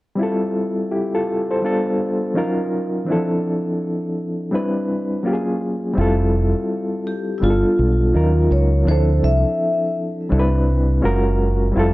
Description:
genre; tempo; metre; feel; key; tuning
lo-fi hip hop; 83 BPM; 4/4; swing 63% on 16ths; unclear; A4 = 440 Hz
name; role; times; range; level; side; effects
overdriven reed electric piano; accompaniment; 0.2-11.9 s; E3 to C5; -20 LUFS; equal; medium tremolo, cassette tape, low-pass filter
deep dub fingered electric bass; bass; 6.0-11.9 s; F1 to Eb2; -17 LUFS; equal; none
vibraphone with soft mallets; melody; 7.1-9.9 s; E4 to E5; -22 LUFS; equal; low-pass filter
room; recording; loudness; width
light reverb, studio ambience; cassette tape; -17 LUFS; side -18 dB against mid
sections
0.2-6.0 A section; 6.0-11.9 B section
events
none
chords
0.2 Fmaj7; 1.6 G9; 2.4 Ebm9; 3.1 Dm9; 4.5 Cmaj9; 5.2 F#maj7; 6.0 Fmaj7; 7.4 G9; 8.1 Ebm9; 8.9 Dm9; 10.3 Cmaj9; 11.0 F#maj7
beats
| 0.19 0.91 1.63 2.35 | 3.08 3.80 4.52 5.25 | 5.97 6.69 7.42 8.14 | 8.86 9.58 10.31 11.03 | 11.75

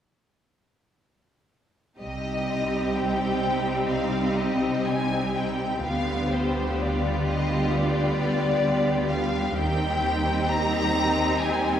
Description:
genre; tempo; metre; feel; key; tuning
classical, slow romantic movement for symphony orchestra; 60-68 BPM; 4/4; rubato; C minor; A4 = 440 Hz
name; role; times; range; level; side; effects
warm symphonic violin section; melody; 2.0-11.8 s; C5 to Bb5; -28 LUFS; left 3 dB; none
rich studio violin section; second line; 2.0-11.8 s; Eb4 to G4; -30 LUFS; left 1 dB; none
rich symphonic viola section; accompaniment; 2.0-11.8 s; G3 to C4; -28 LUFS; right 1 dB; none
rich symphonic cello section; bass; 2.0-11.8 s; C3 to Eb3; -31 LUFS; right 1 dB; none
rich symphonic double bass section; bass; 2.0-11.8 s; C2 to Eb2; -30 LUFS; right 1 dB; none
room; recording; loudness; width
wet scoring stage reverb, RT60 1.7 s; heard from further back in the room; -22 LUFS; side -9 dB against mid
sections
2.0-11.8 A section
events
none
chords
2.0 Cm; 5.9 G7/D; 9.6 Cm/Eb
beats
| 2.00 2.96 3.91 4.88 | 5.87 6.83 7.75 8.65 | 9.59 10.51 11.42

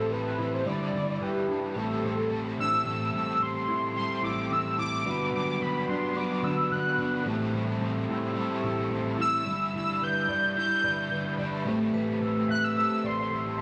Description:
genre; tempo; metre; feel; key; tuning
dream pop; 109 BPM; 4/4; straight; A dorian; A4 = 440 Hz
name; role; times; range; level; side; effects
warm velvety synth lead; melody; 0.0-13.6 s; G4 to G6; -31 LUFS; equal; chorus, digital delay
biting overdriven guitar; accompaniment; 0.0-13.6 s; A2 to B4; -38 LUFS; equal; harmonic tremolo, ensemble chorus
mellow tonewheel organ; sustained chords; 0.0-13.6 s; G3 to B4; -36 LUFS; equal; slow rotary speaker
mellow electric guitar; arpeggios; 0.0-13.6 s; G2 to E5; -35 LUFS; equal; subtle chorus, digital delay
vintage muted picked electric bass; bass; 0.0-13.6 s; G1 to A2; -38 LUFS; equal; none
vibraphone with medium mallets; texture; 1.2-2.0, 11.9-13.2 s; G4 to B4; -43 LUFS; equal; digital delay
room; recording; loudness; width
moderate concert hall reverb, RT60 2.2 s; recorded on a phone in the room, studio ambience, compression; -28 LUFS; mono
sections
0.0-2.9 A section; 2.9-13.6 B section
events
none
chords
0.0 Am7; 0.7 Em7/G; 1.8 Am7; 5.1 Gmaj7; 7.3 Am7; 9.5 Em7/G; 11.7 Am7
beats
0.10 | 0.66 1.21 1.76 2.31 | 2.86 3.41 3.96 4.51 | 5.06 5.61 6.16 6.71 | 7.26 7.81 8.36 8.91 | 9.46 10.01 10.56 11.12 | 11.66 12.21 12.77 13.32

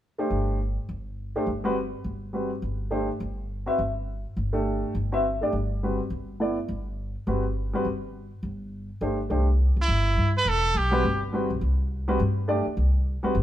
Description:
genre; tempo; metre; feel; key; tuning
modal jazz; 207 BPM; 4/4; swing 60% on 8ths; C lydian; A4 = 445 Hz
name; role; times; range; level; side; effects
warm grand piano; accompaniment; 0.2-13.3 s; G3 to E5; -27 LUFS; equal; none
upright bass; bass; 0.3-13.4 s; E1 to G2; -27 LUFS; equal; none
brilliant trumpet; melody; 9.8-11.2 s; E4 to B4; -24 LUFS; right 2 dB; none
room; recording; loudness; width
moderate stone room reverb, RT60 1.1 s; band playing live in one room; -24 LUFS; side -12 dB against mid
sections
0.0-9.3 A section; 9.3-13.4 B section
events
none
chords
0.0 Csus2; 9.3 C5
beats
| 0.02 0.31 0.60 0.89 | 1.18 1.47 1.76 2.05 | 2.34 2.63 2.92 3.21 | 3.50 3.79 4.08 4.37 | 4.66 4.95 5.24 5.53 | 5.82 6.11 6.40 6.69 | 6.98 7.27 7.56 7.85 | 8.14 8.43 8.71 9.01 | 9.29 9.58 9.87 10.16 | 10.45 10.74 11.03 11.32 | 11.61 11.90 12.19 12.47 | 12.76 13.05 13.34

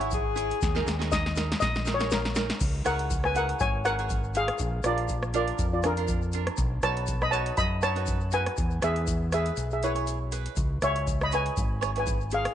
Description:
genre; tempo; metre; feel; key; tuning
calypso; 120 BPM; 4/4; swing 54% on 16ths; unclear; A4 = 440 Hz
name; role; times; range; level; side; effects
bright alto saxophone; second line; 0.0-1.0 s; E4 to G#4; -32 LUFS; left 9 dB; slapback echo
cavaquinho; accompaniment; 0.0-12.5 s; D4 to C#5; -36 LUFS; right 11 dB; none
overdriven fingered electric bass; bass; 0.0-12.5 s; G#1 to F#2; -30 LUFS; equal; none
electro analog drum machine; drums; 0.0-12.5 s; crash cymbal, hi-hat, kick drum, rim click, snare drum; -30 LUFS; equal; none
tube shaker; percussion; 0.1-12.4 s; none; -42 LUFS; left 16 dB; none
steel pan; melody; 1.1-12.5 s; D4 to B5; -29 LUFS; left 1 dB; none
room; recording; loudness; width
moderate spring reverb, RT60 2.4 s; 1960s-style stereo with parts hard left and right, nothing above 10.3 kHz; -25 LUFS; side -10 dB against mid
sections
0.0-2.6 A section; 2.6-12.5 B section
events
steel pan solo 0.0-2.6; drum fill 0.6-2.6; break 9.6-10.6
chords
0.0 C#m; 0.6 D#sus4; 2.6 C#m; 4.6 A#; 6.6 B7; 8.6 E6; 10.6 C#m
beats
0.12 | 0.62 1.12 1.61 2.11 | 2.61 3.11 3.61 4.10 | 4.60 5.10 5.60 6.09 | 6.59 7.09 7.59 8.09 | 8.58 9.08 9.58 10.08 | 10.57 11.07 11.57 12.07

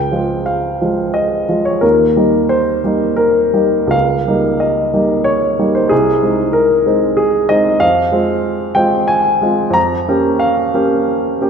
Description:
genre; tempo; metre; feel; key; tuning
classical, romantic character piece for solo piano; 76-97 BPM; 3/4; rubato; Ab major, F minor from 7.8 s; A4 = 440 Hz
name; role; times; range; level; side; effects
warm baby grand piano; solo; 0.0-11.5 s; C2 to Bb5; -12 LUFS; equal; none
room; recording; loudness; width
wet concert hall reverb, RT60 1.8 s; none; -12 LUFS; side -6 dB against mid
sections
0.0-11.5 A section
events
none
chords
0.0 Db; 1.8 Eb; 3.9 Eb7/Db; 5.9 Ab/C; 7.8 Fm; 9.8 Gm7b5/F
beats
0.49 1.16 | 1.84 2.51 3.18 | 3.94 4.62 5.26 | 5.91 6.55 7.19 | 7.82 8.45 9.09 | 9.76 10.41 11.08

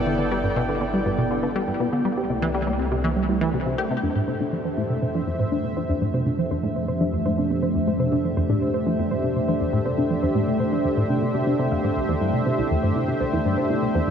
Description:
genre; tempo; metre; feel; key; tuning
ambient, sequencer-driven space music; 121 BPM; 4/4; straight; C major, F major from 4.0 s; A4 = 437 Hz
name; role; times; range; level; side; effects
sweeping resonant pad; sustained chords; 0.0-14.1 s; F2 to G5; -24 LUFS; equal; chorus
round analog bass; bass; 0.0-4.0 s; G1 to C2; -31 LUFS; equal; tube saturation
soft round pluck; arpeggios; 0.1-14.1 s; Bb3 to F5; -29 LUFS; equal; chorus, auto-pan, tape echo
tight sequenced synth; riff; 0.1-14.1 s; C2 to G4; -24 LUFS; equal; chorus, tape echo
room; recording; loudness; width
wet huge ambient reverb, RT60 7.8 s; dreamy mix soaked in reverb; -21 LUFS; side -8 dB against mid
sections
0.0-4.0 A section; 4.0-14.1 B section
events
filter sweep on synth arpeggio sound 4.0-14.1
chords
0.0 G; 2.0 C7; 4.0 F6; 12.0 C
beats
| 0.07 0.56 1.06 1.55 | 2.05 2.54 3.04 3.54 | 4.03 4.53 5.02 5.52 | 6.01 6.51 7.01 7.50 | 8.00 8.49 8.99 9.49 | 9.98 10.48 10.97 11.47 | 11.97 12.46 12.96 13.45 | 13.95

